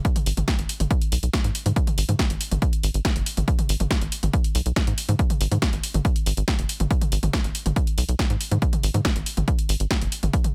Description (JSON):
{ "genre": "driving peak-time techno", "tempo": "140 BPM", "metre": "4/4", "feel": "straight", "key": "G# minor", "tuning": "A4 = 443 Hz", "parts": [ { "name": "electronic kick drum", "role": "drums", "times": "0.0-10.4 s", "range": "none", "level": "-25 LUFS", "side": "equal", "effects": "overdrive" }, { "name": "punchy analog drum machine", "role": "drums", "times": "0.0-10.5 s", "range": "hi-hat, snare drum, toms", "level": "-30 LUFS", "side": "equal", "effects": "overdrive" }, { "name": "tight sequencer bass", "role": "bass", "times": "0.3-10.3 s", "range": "F#1 to G#2", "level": "-26 LUFS", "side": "equal", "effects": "sidechain pumping" } ], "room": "digital ambience", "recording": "none", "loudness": "-23 LUFS", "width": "mono", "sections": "0.0-10.5 A section", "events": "none", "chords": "none", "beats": "| 0.05 0.48 0.91 1.33 | 1.76 2.19 2.62 3.05 | 3.48 3.91 4.33 4.76 | 5.19 5.62 6.05 6.48 | 6.91 7.33 7.76 8.19 | 8.62 9.05 9.48 9.91 | 10.34" }